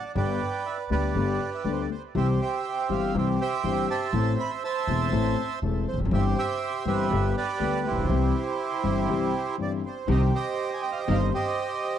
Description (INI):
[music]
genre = tango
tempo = 121 BPM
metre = 4/4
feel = rubato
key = C major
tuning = A4 = 437 Hz
[part]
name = bandoneon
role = melody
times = 0.0-12.0 s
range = E4 to B5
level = -28 LUFS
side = right 5 dB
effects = tape echo
[part]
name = warm concert grand piano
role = accompaniment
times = 0.2-11.3 s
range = E1 to A4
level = -27 LUFS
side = left 6 dB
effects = none
[part]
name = upright bass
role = bass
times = 0.2-11.3 s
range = E1 to D2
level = -28 LUFS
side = right 1 dB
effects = none
[part]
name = dark studio string section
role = stabs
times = 10.1-11.3 s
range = C4 to G4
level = -33 LUFS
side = right 6 dB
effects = none
[sound]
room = little or no reverb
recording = dry, close 1970s-style studio recording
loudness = -24 LUFS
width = side -10 dB against mid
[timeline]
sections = 0.0-10.1 A section; 10.1-12.0 B section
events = break 9.1-10.1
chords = 0.2 G; 2.1 C; 4.1 Am; 6.1 C/G; 7.1 G; 8.1 C; 10.1 Cm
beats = | 0.15 0.65 1.15 1.65 | 2.15 2.65 3.14 3.64 | 4.14 4.63 5.13 5.62 | 6.12 6.61 7.11 7.60 | 8.09 8.59 9.09 9.59 | 10.09 10.58 11.08 11.58